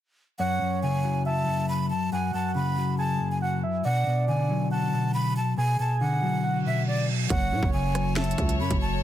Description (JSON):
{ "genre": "hip hop, drill", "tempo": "139 BPM", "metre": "4/4", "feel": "half-time", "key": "F# minor", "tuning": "A4 = 440 Hz", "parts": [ { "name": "breathy jazz flute", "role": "melody", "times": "0.4-9.0 s", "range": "D5 to B5", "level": "-30 LUFS", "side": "equal", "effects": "ping-pong delay" }, { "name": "soft octave-layered synth lead", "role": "second line", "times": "0.4-8.6 s", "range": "C#5 to G#5", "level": "-33 LUFS", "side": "right 4 dB", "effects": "chorus, ping-pong delay" }, { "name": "mellow electric guitar", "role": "accompaniment", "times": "0.4-9.0 s", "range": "F#2 to F#3", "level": "-26 LUFS", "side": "left 2 dB", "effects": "none" }, { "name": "reverse cymbal", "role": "sound effects", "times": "6.6-7.3 s", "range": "none", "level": "-34 LUFS", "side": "right 8 dB", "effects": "none" }, { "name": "warm chamber string section", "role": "sustained chords", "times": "7.3-9.0 s", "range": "F#3 to C#5", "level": "-36 LUFS", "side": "left 3 dB", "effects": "none" }, { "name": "growling 808-style bass", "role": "bass", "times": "7.3-9.0 s", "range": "F#1 to A2", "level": "-28 LUFS", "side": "right 1 dB", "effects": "none" }, { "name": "drill drum kit", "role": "drums", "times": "7.3-8.8 s", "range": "finger snaps, hi-hat, kick drum, rim click, snare drum", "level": "-28 LUFS", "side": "right 1 dB", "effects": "soft clipping on snare" } ], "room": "light reverb, digital ambience", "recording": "dense, heavily limited modern master", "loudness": "-23 LUFS", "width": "side -12 dB against mid", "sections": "0.4-7.3 A section; 7.3-9.0 B section", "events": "reverse cymbal 6.6-7.3", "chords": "0.4 F#m; 3.8 Bm7; 7.3 F#m", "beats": "| 0.40 0.83 1.26 1.69 | 2.12 2.55 2.99 3.42 | 3.85 4.28 4.71 5.14 | 5.58 6.01 6.44 6.87 | 7.30 7.73 8.17 8.60 | 9.03" }